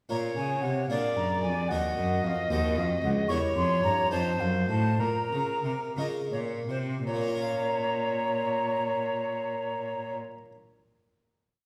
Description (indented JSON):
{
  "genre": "classical, baroque-style sonata movement with continuo",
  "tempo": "54-76 BPM (dotted quarters)",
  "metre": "6/8",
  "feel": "straight",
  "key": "Bb minor",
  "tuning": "A4 = 440 Hz",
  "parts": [
    { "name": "mellow alto recorder", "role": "melody", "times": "0.1-10.2 s", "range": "Bb4 to Eb5", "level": "-33 LUFS", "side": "equal", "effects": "none" },
    { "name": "mellow hollow silver concert flute", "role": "second line", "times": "0.1-10.2 s", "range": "Eb5 to C#6", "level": "-35 LUFS", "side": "equal", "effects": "none" },
    { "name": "harpsichord", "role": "accompaniment", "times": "0.1-10.5 s", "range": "Db2 to F5", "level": "-37 LUFS", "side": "equal", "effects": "none" },
    { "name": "rich cello", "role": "bass", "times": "0.1-10.1 s", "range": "Db2 to Db3", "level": "-33 LUFS", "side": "equal", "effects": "none" }
  ],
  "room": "wet recital hall reverb, RT60 1.3 s",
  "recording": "recorded in a church or concert hall",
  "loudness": "-29 LUFS",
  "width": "mono",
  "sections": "0.1-7.1 A section; 7.1-11.5 final chord",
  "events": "slowing down 2.5-7.1",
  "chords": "0.1 Bbm; 0.9 Bb7; 1.7 Ebm; 2.5 Cdim/Eb; 3.3 Edim7; 4.1 F7; 5.0 Bbm"
}